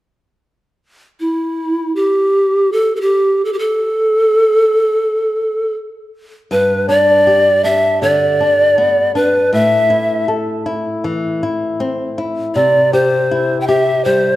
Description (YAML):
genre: andean folk, Andean ensemble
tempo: 79 BPM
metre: 4/4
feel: straight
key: unclear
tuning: A4 = 439 Hz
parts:
  - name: reedy pan flute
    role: melody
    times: 1.2-14.4 s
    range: E4 to G5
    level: -12 LUFS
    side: equal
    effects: none
  - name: flamenco guitar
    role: accompaniment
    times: 6.5-14.4 s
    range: G2 to A4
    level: -18 LUFS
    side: left 2 dB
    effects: none
room: wet recital hall reverb, RT60 1.7 s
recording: none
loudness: -12 LUFS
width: side -15 dB against mid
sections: 0.5-6.5 A section; 6.5-14.4 B section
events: none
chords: 0.5 N.C.; 6.5 G; 9.5 Am; 12.6 C